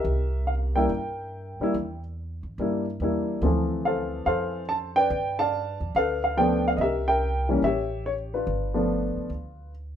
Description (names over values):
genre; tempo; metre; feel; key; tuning
jazz piano trio; 142 BPM; 4/4; swing 66% on 8ths; unclear; A4 = 440 Hz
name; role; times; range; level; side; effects
dark baby grand piano; melody; 0.0-9.7 s; E3 to A5; -24 LUFS; left 1 dB; none
upright bass; bass; 0.0-10.0 s; G1 to G2; -30 LUFS; right 1 dB; none
room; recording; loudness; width
light reverb; minimal, uncompressed stereo recording; -23 LUFS; side -9 dB against mid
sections
0.0-10.0 A section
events
none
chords
0.1 C9; 3.4 Dm7; 5.1 G9; 6.8 C7; 7.6 A7; 8.5 G9